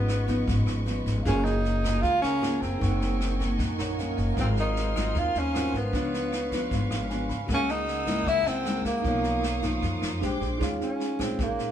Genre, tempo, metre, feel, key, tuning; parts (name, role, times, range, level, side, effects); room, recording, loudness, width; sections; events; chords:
bossa nova; 154 BPM; 4/4; straight; A4 = 440 Hz
breathy tenor saxophone; melody; 0.0-11.7 s; Bb3 to F4; -28 LUFS; equal
bell-like tine electric piano; accompaniment; 0.0-11.7 s; Db4 to Db6; -35 LUFS; right 4 dB; medium stereo tremolo
nylon-string guitar; accompaniment; 0.0-11.7 s; Gb2 to Ab4; -31 LUFS; left 1 dB
warm studio violin section; sustained chords; 0.0-10.6 s; Ab4 to F6; -38 LUFS; left 1 dB
upright bass; bass; 0.0-11.6 s; Gb1 to F#2; -30 LUFS; equal
jazz brush drum kit; drums; 0.1-11.6 s; kick drum, rim click, snare drum; -34 LUFS; left 1 dB
moderate stone room reverb, RT60 0.9 s; band playing live in one room; -24 LUFS; side -10 dB against mid
0.0-10.6 A section; 10.6-11.7 B section
tine electric piano fill 3.6-4.4, 6.7-7.5; tenor saxophone solo 10.6-11.7
0.0 Db9/Ab; 1.3 Gbmaj9; 2.8 Ebm7/Gb; 4.4 Ab13; 5.9 Db7b9; 7.5 Gb9/Db; 9.0 Bmaj9#11; 10.2 Bb13; 10.6 Eb9sus4